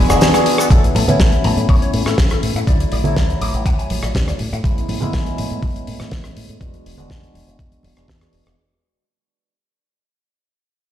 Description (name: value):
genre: nu-disco, nu disco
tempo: 122 BPM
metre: 4/4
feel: straight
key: A major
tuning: A4 = 440 Hz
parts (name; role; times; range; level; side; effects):
- barky tine electric piano; accompaniment; 0.0-8.6 s; F#3 to G#4; -21 LUFS; left 1 dB; phaser, sidechain pumping, ping-pong delay
- clear studio violin section; sustained chords; 0.0-0.7 s; G#3 to E5; -28 LUFS; right 2 dB; sidechain pumping
- electric guitar with an envelope filter; riff; 0.0-4.6 s; B3 to D6; -27 LUFS; left 3 dB; wide subtle chorus, ping-pong delay
- fingered electric bass with an envelope filter; bass; 0.0-8.5 s; E1 to A2; -21 LUFS; equal; tube saturation, sidechain pumping
- damped 70s drum kit; drums; 0.1-8.6 s; hi-hat, rim click, shaker, snare drum; -22 LUFS; left 1 dB; studio reverb
- electronic kick drum; drums; 0.7-8.2 s; none; -16 LUFS; equal; studio reverb
- congas; percussion; 0.9-7.9 s; none; -24 LUFS; right 2 dB; none
room: light reverb, small room ambience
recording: played on a big sound system in a bare room, stone room reverb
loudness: -14 LUFS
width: side -11 dB against mid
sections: 0.7-8.6 A section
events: fade-out 0.7-8.6; filter sweep on fingered electric bass 0.7-8.6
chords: 0.0 E9; 0.7 A; 2.7 Dadd9; 4.4 Amaj7; 6.6 E9